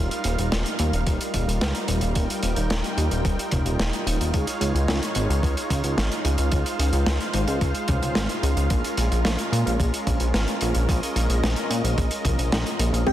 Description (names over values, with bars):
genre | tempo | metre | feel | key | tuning
synthwave | 110 BPM | 4/4 | straight | unclear | A4 = 440 Hz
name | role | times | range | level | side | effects
brassy analog pad | sustained chords | 0.0-13.1 s | Eb3 to G5 | -28 LUFS | right 1 dB | chorus, sidechain pumping
chorused synth bass | bass | 0.0-13.1 s | Eb1 to Bb2 | -23 LUFS | equal | none
crunchy breakbeat drum kit | drums | 0.1-13.1 s | hi-hat, snare drum, toms | -28 LUFS | equal | none
electronic kick drum | drums | 1.1-13.1 s | none | -26 LUFS | equal | none
soft octave-layered synth lead | melody | 13.1 s | G4 | -23 LUFS | left 4 dB | chorus
airy dreamy lead | second line | 13.1 s | G5 | -25 LUFS | left 6 dB | chorus
thumb-piano-like synth pluck | arpeggios | 13.1 s | C4 | -24 LUFS | right 2 dB | chorus
mellow FM electric piano | stabs | 13.1 s | Ab3 to G4 | -22 LUFS | right 4 dB | chorus, phaser, low-pass filter
room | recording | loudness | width
light reverb, small room reverb | dense, heavily limited modern master | -21 LUFS | side -12 dB against mid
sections
0.0-13.1 A section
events
kick drops out 12.5-13.1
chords
0.0 Ebadd9; 4.3 Dbadd9; 8.7 Bbm7